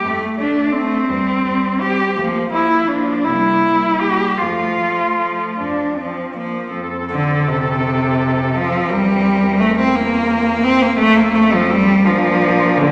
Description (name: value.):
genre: classical, lyrical piece for cello ensemble.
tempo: 50-59 BPM (dotted quarters).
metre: 6/8.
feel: rubato.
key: F major.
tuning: A4 = 441 Hz.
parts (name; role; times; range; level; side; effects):
rich cello; melody; 0.0-12.9 s; C4 to Bb4; -21 LUFS; equal; none.
warm cello; second line; 0.0-12.9 s; A3 to D4; -27 LUFS; equal; none.
clear cello; accompaniment; 0.0-12.9 s; C3 to C4; -19 LUFS; equal; none.
rich cello; bass; 0.0-12.9 s; C2 to Bb2; -31 LUFS; equal; none.
room: wet recital hall reverb, RT60 1.8 s.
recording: none.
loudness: -16 LUFS.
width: mono.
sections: 0.0-6.7 A section; 6.7-12.9 A section.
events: none.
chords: 0.0 F6; 1.1 C/E; 2.2 Bb/D; 3.3 C7; 4.4 F; 8.9 C7/E; 11.0 F; 12.0 Bb.